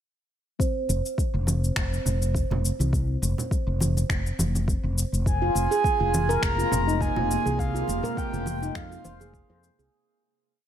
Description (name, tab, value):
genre	organic downtempo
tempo	103 BPM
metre	4/4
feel	swing 54% on 16ths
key	F minor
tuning	A4 = 440 Hz
part	electronic kick drum	drums	0.6-9.5 s	none	-27 LUFS	equal	overdrive
part	electronic shaker and finger snaps	drums	0.6-9.9 s	none	-32 LUFS	left 2 dB	overdrive
part	bronze singing bowl	texture	0.6-9.9 s	C4 to C5	-35 LUFS	right 2 dB	none
part	mellow fretless electric bass	bass	0.9-9.9 s	F1 to F2	-26 LUFS	equal	ensemble chorus, sidechain pumping
part	congas	percussion	0.9-9.3 s	none	-32 LUFS	right 2 dB	none
part	breathy flute-like synth lead	melody	5.3-9.6 s	F5 to Bb5	-28 LUFS	right 2 dB	wide subtle chorus, tape echo
part	bowed-like drone	sustained chords	6.4-9.9 s	C3 to Bb3	-34 LUFS	left 1 dB	built-in reverb, vintage 12-bit sampler grit, sidechain pumping
part	handpan	arpeggios	5.4-9.9 s	Eb4 to C5	-29 LUFS	equal	none
room	light reverb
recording	none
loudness	-23 LUFS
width	side -10 dB against mid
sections	0.6-9.9 groove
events	fade-out 6.8-9.9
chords	0.6 F5; 5.3 Bbsus2/F